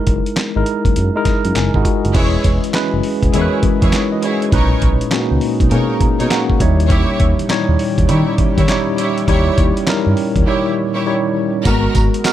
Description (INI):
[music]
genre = R&B, new jack swing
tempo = 101 BPM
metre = 4/4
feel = swing 64% on 16ths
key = unclear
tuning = A4 = 440 Hz
[part]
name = tine electric piano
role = accompaniment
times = 0.0-12.3 s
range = A#2 to A#5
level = -18 LUFS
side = left 1 dB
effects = medium stereo tremolo
[part]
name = smooth gliding synth bass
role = bass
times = 0.1-12.1 s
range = E1 to D#3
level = -17 LUFS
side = equal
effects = none
[part]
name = dusty soul sampler-style drum kit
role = drums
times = 0.1-12.3 s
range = crash cymbal, handclaps, hi-hat, kick drum, snare drum, tambourine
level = -17 LUFS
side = equal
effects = none
[part]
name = chorused pulse-width pad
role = sustained chords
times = 2.1-12.3 s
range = A#2 to A#4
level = -24 LUFS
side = equal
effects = none
[part]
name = warm studio string section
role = stabs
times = 2.1-11.9 s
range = B3 to C#5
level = -23 LUFS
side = right 2 dB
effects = none
[sound]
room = little or no reverb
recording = none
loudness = -13 LUFS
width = side -12 dB against mid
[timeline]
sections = 0.0-2.1 A section; 2.1-11.7 B section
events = tine electric piano fill 1.0-2.1, 5.7-6.9; break 10.5-11.7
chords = 0.0 F#13; 2.1 E6; 4.5 Bmaj9; 6.6 D#7b9; 11.7 G#m9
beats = 0.37 0.96 1.55 | 2.15 2.74 3.34 3.93 | 4.53 5.12 5.71 6.31 | 6.90 7.50 8.09 8.68 | 9.28 9.87 10.47 11.06 | 11.65 12.25